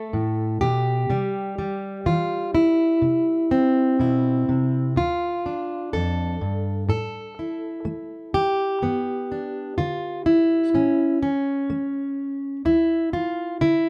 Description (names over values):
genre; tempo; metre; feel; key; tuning
folk, solo fingerstyle acoustic guitar; 62 BPM; 4/4; straight; unclear; A4 = 440 Hz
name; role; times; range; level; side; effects
fingerpicked plugged-in steel-string acoustic guitar; solo; 0.0-13.9 s; D2 to A4; -23 LUFS; equal; none
room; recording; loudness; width
light reverb; none; -23 LUFS; mono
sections
0.0-13.9 A section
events
none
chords
0.0 Gadd9/A; 1.1 C; 5.0 Dm; 6.9 A5; 8.8 G; 10.7 A; 12.7 N.C.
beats
0.13 | 1.10 2.06 3.02 4.00 | 4.97 5.93 6.90 7.87 | 8.83 9.79 10.74 11.70 | 12.66 13.62